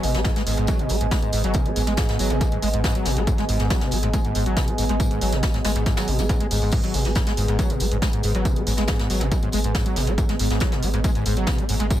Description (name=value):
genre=driving peak-time techno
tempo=139 BPM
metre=4/4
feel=straight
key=G# minor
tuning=A4 = 444 Hz
part: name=screaming distorted acid line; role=riff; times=0.0-12.0 s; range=G#2 to G#3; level=-26 LUFS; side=equal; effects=distortion, ensemble chorus, sidechain pumping, analog delay
part: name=warm sub bass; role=bass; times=0.0-11.9 s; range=G#1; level=-26 LUFS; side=equal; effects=overdrive, sidechain pumping, low-pass filter
part: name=jazz brush drum kit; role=drums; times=0.0-12.0 s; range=hi-hat, snare drum, tambourine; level=-32 LUFS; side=left 2 dB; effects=sidechain pumping on hats, high-pass filter on hats, high-pass filter on snare, sidechain pumping on perc, high-pass filter on perc, high-pass filter on room, analog delay
part: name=punchy analog drum machine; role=drums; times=0.0-12.0 s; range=crash cymbal, hi-hat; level=-32 LUFS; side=right 2 dB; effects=sidechain pumping on hats, sidechain pumping on cymbals
part: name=warbly tape-like pad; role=texture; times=0.0-12.0 s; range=B3 to G#5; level=-28 LUFS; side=right 1 dB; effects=chorus, built-in reverb, sidechain pumping
part: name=electronic kick drum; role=drums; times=0.2-12.0 s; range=none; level=-23 LUFS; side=equal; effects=none
room=light reverb, small room reverb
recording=echo-heavy mix, faint mains hum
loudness=-19 LUFS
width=side -12 dB against mid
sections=0.0-12.0 A section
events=none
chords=0.0 G#m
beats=0.25 0.68 1.11 | 1.54 1.98 2.41 2.84 | 3.27 3.70 4.13 4.57 | 5.00 5.43 5.86 6.29 | 6.72 7.16 7.59 8.02 | 8.45 8.88 9.31 9.75 | 10.18 10.61 11.04 11.47 | 11.90